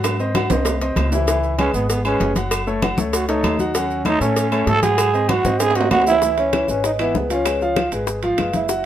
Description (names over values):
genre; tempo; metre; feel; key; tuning
Afro-Cuban jazz; 194 BPM; 4/4; straight; unclear; A4 = 440 Hz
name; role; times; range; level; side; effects
warm grand piano; accompaniment; 0.0-8.9 s; E3 to F#5; -22 LUFS; left 1 dB; none
upright bass; bass; 0.0-8.9 s; F#1 to A2; -24 LUFS; equal; none
claves; percussion; 0.0-8.5 s; none; -32 LUFS; left 4 dB; none
congas; percussion; 0.0-8.8 s; none; -26 LUFS; left 2 dB; none
cowbell and bongos; percussion; 0.0-8.8 s; none; -26 LUFS; left 3 dB; none
maracas; percussion; 0.0-8.8 s; none; -32 LUFS; right 4 dB; none
timbales and agogo bells; percussion; 0.0-8.7 s; none; -27 LUFS; right 5 dB; none
growling trombone; second line; 1.6-8.8 s; B3 to A4; -21 LUFS; right 3 dB; none
vibraphone with soft mallets; melody; 5.9-8.9 s; B4 to F#5; -20 LUFS; right 1 dB; none
room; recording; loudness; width
light reverb; minimal, uncompressed stereo recording; -16 LUFS; side -11 dB against mid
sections
0.0-6.2 A section; 6.2-8.9 B section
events
trombone solo 0.0-6.2; drum fill 0.0-1.3, 5.6-6.2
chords
0.0 G#7; 1.3 C#m7; 2.5 F#m; 3.7 D#m7b5; 5.0 G#7; 6.2 C#m7; 7.5 C#7